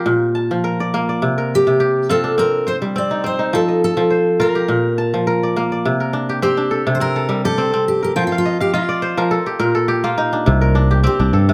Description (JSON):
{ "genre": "west african traditional", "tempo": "104 BPM", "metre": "4/4", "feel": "swing 53% on 16ths", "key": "C dorian", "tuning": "A4 = 440 Hz", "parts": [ { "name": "kora", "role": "arpeggios", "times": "0.0-11.5 s", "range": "Bb2 to A5", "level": "-20 LUFS", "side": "equal", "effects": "none" }, { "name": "fingerpicked steel-string acoustic guitar", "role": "melody", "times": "1.6-11.5 s", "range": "F4 to D5", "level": "-21 LUFS", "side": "equal", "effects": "none" }, { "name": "fingered electric bass", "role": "bass", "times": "10.5-11.5 s", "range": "C2 to G2", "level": "-15 LUFS", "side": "equal", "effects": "none" } ], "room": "light reverb", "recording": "close, detailed microphones", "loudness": "-17 LUFS", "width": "mono", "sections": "0.0-5.9 A section; 5.9-11.5 B section", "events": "kora fill 8.2-10.5", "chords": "0.1 Bb; 1.2 Cm; 3.5 F; 4.7 Bb; 5.9 C5; 8.2 F13sus4; 9.3 N.C.; 10.5 Cm" }